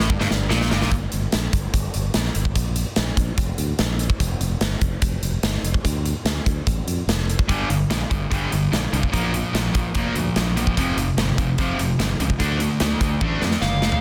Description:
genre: hard rock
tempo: 146 BPM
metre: 4/4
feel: straight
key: G minor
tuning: A4 = 441 Hz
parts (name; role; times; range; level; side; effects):
- overdriven tonewheel organ; sustained chords; 0.0-0.9 s; G3 to Bb4; -39 LUFS; equal; none
- crunchy overdriven guitar; riff; 0.0-0.9, 7.5-14.0 s; F2 to D4; -28 LUFS; equal; none
- scooped high-gain guitar; riff; 0.0-0.9, 7.5-14.0 s; F2 to D4; -28 LUFS; equal; distortion
- modern bright fingered electric bass; bass; 0.0-13.9 s; F1 to F2; -27 LUFS; equal; none
- big rock drum kit; drums; 0.0-14.0 s; hi-hat, kick drum, snare drum, toms; -25 LUFS; equal; none
- dark smooth lead guitar; melody; 13.6-14.0 s; F5; -26 LUFS; equal; overdrive
room: small room ambience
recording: dense, heavily limited modern master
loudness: -22 LUFS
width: mono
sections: 0.9-14.0 A section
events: drum fill 0.0-0.9, 13.2-14.0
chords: 0.0 Gm; 2.6 N.C.; 4.2 Fsus2; 5.8 Dm; 7.5 Gm; 9.1 Bb5; 10.8 Fsus2; 12.4 Dm

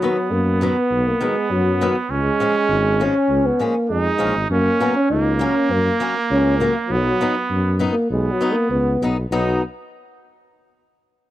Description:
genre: alpine folk, alpine dance band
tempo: 100 BPM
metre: 2/4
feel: straight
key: B major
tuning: A4 = 442 Hz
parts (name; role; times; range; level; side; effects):
- warm euphonium; melody; 0.0-9.6 s; F#3 to D#4; -20 LUFS; equal; none
- clear trumpet; second line; 0.0-9.6 s; A#3 to D#4; -23 LUFS; right 4 dB; none
- fingerpicked swing-style acoustic guitar; accompaniment; 0.0-9.6 s; D#3 to D#4; -24 LUFS; left 4 dB; none
- mellow tuba; bass; 0.3-9.6 s; G#1 to F#2; -21 LUFS; equal; none
room: small room ambience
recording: dry, close 1970s-style studio recording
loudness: -16 LUFS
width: side -14 dB against mid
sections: 0.0-9.3 A section; 9.3-10.5 B section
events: none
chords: 0.0 B; 2.1 C#; 4.5 F#; 6.9 B

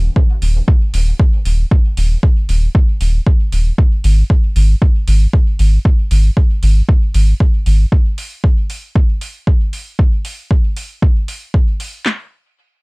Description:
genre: dub techno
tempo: 116 BPM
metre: 4/4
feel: straight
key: unclear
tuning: A4 = 440 Hz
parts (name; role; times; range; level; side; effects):
- round analog bass; bass; 0.0-7.9 s; D#1 to G#1; -11 LUFS; equal; sidechain pumping
- deep house drum kit; drums; 0.2-12.2 s; handclaps, kick drum, snare drum; -12 LUFS; equal; overdrive
- electronic hi-hat; drums; 0.4-11.9 s; none; -30 LUFS; right 2 dB; overdrive
room: digital ambience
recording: dark, warm production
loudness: -12 LUFS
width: side -30 dB against mid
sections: 0.0-12.1 A section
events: filter sweep on analog synth bass 0.0-7.9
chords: none

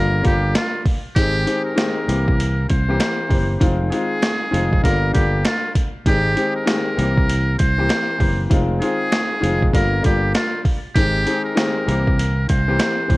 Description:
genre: hip hop, boom-bap hip-hop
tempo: 98 BPM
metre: 4/4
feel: swing 60% on 16ths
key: unclear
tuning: A4 = 445 Hz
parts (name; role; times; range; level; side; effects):
- trumpet with metal mute; melody; 0.0-13.2 s; F4 to C5; -23 LUFS; equal; high-pass filter, low-pass filter, cassette tape
- warm grand piano; accompaniment; 0.0-13.2 s; D3 to G4; -22 LUFS; left 2 dB; cassette tape, high-pass filter, low-pass filter
- fingered electric bass; bass; 0.0-13.2 s; F1 to C2; -20 LUFS; equal; none
- boom bap sampler-style drum kit; drums; 0.2-13.2 s; hi-hat, kick drum, snare drum; -20 LUFS; equal; none
- finger snaps; percussion; 0.5-13.0 s; none; -36 LUFS; right 2 dB; none
room: small room reverb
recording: home recording on cassette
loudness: -16 LUFS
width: side -20 dB against mid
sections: 0.0-13.2 A section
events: none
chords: 0.0 Gm7; 1.2 Abmaj7; 2.1 C7; 3.6 Fm7; 4.8 Gm7; 6.1 Abmaj7; 7.0 C7; 8.5 Fm7; 9.7 Gm7; 11.0 Abmaj7; 11.9 C7

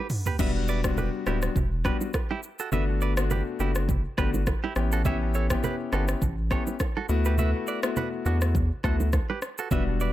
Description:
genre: afrobeats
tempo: 103 BPM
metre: 4/4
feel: swing 55% on 16ths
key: unclear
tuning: A4 = 437 Hz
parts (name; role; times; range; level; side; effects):
- direct-recorded clean electric guitar; riff; 0.0-10.1 s; D4 to E5; -34 LUFS; right 6 dB; analog delay
- deep house drum kit; drums; 0.1-10.1 s; crash cymbal, hi-hat, kick drum, rim click, shaker, toms; -29 LUFS; equal; none
- clear concert grand piano; accompaniment; 0.4-10.1 s; G3 to G4; -30 LUFS; left 6 dB; none
- saturated sub bass; bass; 0.4-10.1 s; D1 to E2; -26 LUFS; equal; none
- congas and bongos; percussion; 0.4-9.9 s; none; -34 LUFS; right 5 dB; none
room: light reverb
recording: echo-heavy mix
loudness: -24 LUFS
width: side -14 dB against mid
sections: 0.4-10.1 A section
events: drum fill 0.0-0.4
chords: 0.0 D6; 2.7 Gmaj7; 4.8 A7; 7.1 D6

